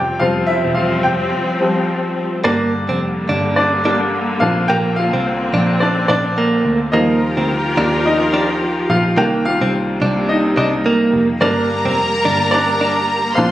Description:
pop; 107 BPM; 4/4; swing 56% on 16ths; G minor; A4 = 440 Hz
clear upright piano; accompaniment; 0.0-13.5 s; Eb3 to G5; -18 LUFS; left 1 dB
clear studio string section; sustained chords; 0.0-13.5 s; C3 to Bb4; -21 LUFS; left 1 dB
vintage muted picked electric bass; bass; 0.0-13.5 s; E1 to Eb2; -22 LUFS; equal
direct-recorded clean electric guitar; riff; 2.4-13.0 s; Bb3 to D4; -19 LUFS; right 3 dB
warm studio violin section; second line; 11.4-13.5 s; Bb4 to C6; -18 LUFS; equal
moderate large studio reverb, RT60 0.9 s; recorded on a phone in the room, studio reverb, compression; -14 LUFS; side -13 dB against mid
0.0-2.5 A section; 2.5-13.5 B section
upright piano solo 0.0-2.5, 2.5-13.5; break 1.3-2.5
0.0 Fsus2; 2.5 Gm; 4.4 Bbadd9; 6.9 Ebadd9; 9.2 Cm7; 11.4 Gm

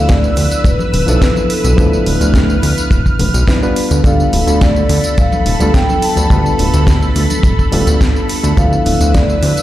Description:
nu-disco, nu disco; 106 BPM; 4/4; straight; D dorian; A4 = 440 Hz
vibraphone with soft mallets; melody; 0.0-9.6 s; A4 to A5; -19 LUFS; left 2 dB; digital delay
bright reed electric piano; accompaniment; 0.0-9.6 s; F3 to B4; -19 LUFS; equal; vintage 12-bit sampler grit, ping-pong delay
lush unison pad; sustained chords; 0.0-9.6 s; A4 to F6; -23 LUFS; right 1 dB; chorus, phaser, vintage 12-bit sampler grit, sidechain pumping
fat analog bass; bass; 0.0-9.5 s; D1 to D2; -13 LUFS; equal
house drum kit; drums; 0.1-9.6 s; hi-hat, snare drum, tambourine; -22 LUFS; equal; overdrive
kick drum; drums; 0.1-9.3 s; -12 LUFS; equal
tube shaker and congas; percussion; 0.1-9.6 s; -22 LUFS; left 2 dB
small room ambience; played on a big sound system in a bare room, large studio reverb; -10 LUFS; side -14 dB against mid
0.0-9.6 A section
0.0 Dm69; 3.8 G9/D; 8.6 Dm69

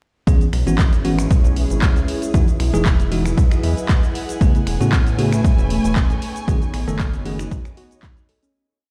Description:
deep house; 116 BPM; 4/4; swing 54% on 16ths; C# minor; A4 = 440 Hz
soft string machine; sustained chords; 0.6-8.5 s; F#3 to D#5; -33 LUFS; equal; ensemble chorus, sidechain pumping
bell-like tine electric piano; stabs; 0.3-7.4 s; C#3 to A4; -26 LUFS; equal; sidechain pumping, tape echo
rubbery square bass; bass; 0.3-7.6 s; E1 to A2; -23 LUFS; equal; sidechain pumping
electronic kick drum; drums; 0.3-8.1 s; -18 LUFS; equal; overdrive
punchy analog drum machine; drums; 0.3-8.5 s; cabasa, finger snaps, handclaps, hi-hat; -31 LUFS; equal; overdrive
airy breathy pad; texture; 0.9-8.5 s; A3 to C#6; -31 LUFS; equal; chorus, sidechain pumping
soft round pluck; arpeggios; 4.4-8.5 s; B3 to A4; -35 LUFS; equal
rich chamber violin section; texture; 4.4-8.6 s; G#5; -37 LUFS; equal; sidechain pumping
light reverb; played on a big sound system in a bare room, stone room reverb, vinyl crackle; -18 LUFS; mono
0.3-8.5 drop
drop 0.3-8.5; fade-out 5.8-8.5
0.3 C#m7; 2.3 Emaj9; 4.4 Amaj9; 6.2 B13

